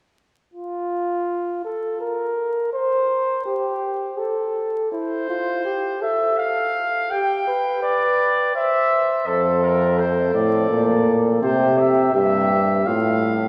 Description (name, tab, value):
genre	classical, imitative canzona for brass ensemble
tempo	83 BPM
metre	3/4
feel	straight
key	F major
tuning	A4 = 440 Hz
part	mellow flugelhorn	second line	0.5-13.3 s	E4 to C5	-24 LUFS	equal	none
part	warm trumpet	melody	4.9-13.5 s	A4 to G5	-24 LUFS	equal	none
part	warm euphonium	bass	9.3-13.5 s	F2 to C3	-22 LUFS	equal	none
room	wet church reverb, RT60 3.9 s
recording	heard from further back in the room, vinyl crackle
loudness	-21 LUFS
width	mono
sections	0.5-13.5 A section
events	none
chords	0.5 N.C.; 4.9 C/E; 6.4 F/A; 7.1 G; 8.6 C; 9.3 F; 10.7 Bbmaj7; 11.4 C; 12.9 F/A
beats	| 0.54 1.28 2.02 | 2.74 3.47 4.19 | 4.92 5.65 6.38 | 7.11 7.83 8.55 | 9.27 9.98 10.70 | 11.43 12.15 12.87